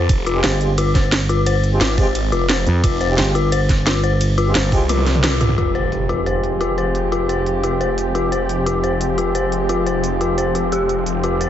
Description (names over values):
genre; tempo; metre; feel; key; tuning
dark technical drum and bass; 175 BPM; 4/4; straight; F minor; A4 = 440 Hz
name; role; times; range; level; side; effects
phased detuned saw bass; bass; 0.0-11.5 s; F1 to C2; -22 LUFS; right 1 dB; phaser, tube saturation, sidechain pumping
drum and bass drum kit; drums; 0.1-11.5 s; hi-hat, ride cymbal, snare drum, toms; -22 LUFS; right 1 dB; low-pass filter on hats, low-pass filter on cymbals, low-pass filter on snare, low-pass filter on toms, low-pass filter on room
electronic kick drum; drums; 0.1-4.8 s; none; -17 LUFS; right 1 dB; none
dark detuned synth bell; arpeggios; 0.3-11.5 s; F4 to C5; -22 LUFS; left 6 dB; chorus, sidechain pumping, dub echo
warm brass ensemble; stabs; 0.3-11.5 s; Ab3 to G4; -23 LUFS; right 1 dB; dub echo
growling FM bass; bass; 0.4-4.7 s; G1 to F2; -18 LUFS; right 1 dB; none
swarming drone; sustained chords; 6.1-11.5 s; F3 to G4; -24 LUFS; left 1 dB; built-in reverb, sidechain pumping
impact; sound effects; 5.6-7.0 s; none; -26 LUFS; right 2 dB; none
room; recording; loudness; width
light reverb; heavily compressed radio sound, nothing above 7.8 kHz; -15 LUFS; side -10 dB against mid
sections
0.0-5.6 A section; 5.6-11.5 B section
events
drop 0.0-5.6; kick drops out 4.9-5.6; drum fill 4.9-5.6; band accent 5.2; impact 5.6-7.0; filter sweep on drum 5.6-11.5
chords
0.0 Fmadd9